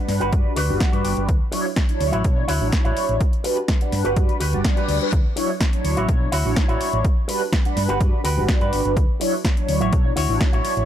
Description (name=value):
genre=filtered disco house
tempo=125 BPM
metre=4/4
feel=straight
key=D major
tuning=A4 = 440 Hz
part: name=mellow synth brass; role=accompaniment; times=0.0-10.9 s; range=F#3 to F#5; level=-24 LUFS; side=right 1 dB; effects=chorus, phaser, sidechain pumping, low-pass filter
part: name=hollow-body short-scale fingered electric bass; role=bass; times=0.1-10.9 s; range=G1 to B2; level=-24 LUFS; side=equal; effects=sidechain pumping, low-pass filter
part: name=punchy analog drum machine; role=drums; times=0.1-10.9 s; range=hi-hat, snare drum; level=-28 LUFS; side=left 1 dB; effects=overdrive, sidechain pumping on hats
part: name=electric guitar with an envelope filter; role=riff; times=0.2-10.8 s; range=E4 to G5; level=-27 LUFS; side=equal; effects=sidechain pumping, low-pass filter
part: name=electronic kick drum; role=drums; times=0.3-10.5 s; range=none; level=-20 LUFS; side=equal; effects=overdrive
part: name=reverse cymbal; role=sound effects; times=4.5-5.1 s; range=none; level=-34 LUFS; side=left 8 dB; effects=none
room=little or no reverb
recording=none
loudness=-18 LUFS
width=side -10 dB against mid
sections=0.0-10.9 A section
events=clean electric guitar fill 0.3-1.3; reverse cymbal 4.5-5.1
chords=0.0 Gmaj7; 1.3 Dmaj9; 3.2 Gmaj7; 5.1 Dmaj9; 7.0 Gmaj7; 9.0 Dmaj9